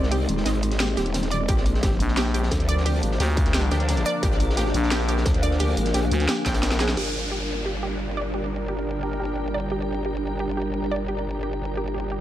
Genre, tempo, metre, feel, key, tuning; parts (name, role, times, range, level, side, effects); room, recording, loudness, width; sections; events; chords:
dark technical drum and bass; 175 BPM; 4/4; straight; G phrygian; A4 = 441 Hz
sweeping resonant pad; sustained chords; 0.0-12.2 s; F3 to Bb4; -30 LUFS; equal; chorus, sidechain pumping
wide unison pluck; arpeggios; 0.0-12.2 s; G4 to G5; -31 LUFS; right 2 dB; sidechain pumping, digital delay
growl bass; bass; 0.0-12.2 s; Eb1 to D2; -26 LUFS; equal; chorus, tube saturation
crunchy breakbeat drum kit; drums; 0.0-7.0 s; hi-hat, snare drum; -34 LUFS; equal; high-pass filter on hats, high-pass filter on snare, high-pass filter on room
granular cloud pad; texture; 0.0-12.2 s; Ab3 to C6; -32 LUFS; left 2 dB; built-in reverb, sidechain pumping
drum and bass drum kit; drums; 0.1-7.0 s; crash cymbal, hi-hat, snare drum; -28 LUFS; equal
electronic kick drum; drums; 1.5-6.5 s; -24 LUFS; equal; distortion
growling FM bass; bass; 2.0-7.0 s; Bb1 to D2; -23 LUFS; equal; tube saturation
downlifter; sound effects; 7.0-9.7 s; -34 LUFS; equal
light reverb; -21 LUFS; side -12 dB against mid
0.0-7.0 A section; 7.0-12.2 B section
drum fill 6.5-7.0; band accent 6.9
0.0 Ab; 1.5 Bb; 7.0 Gm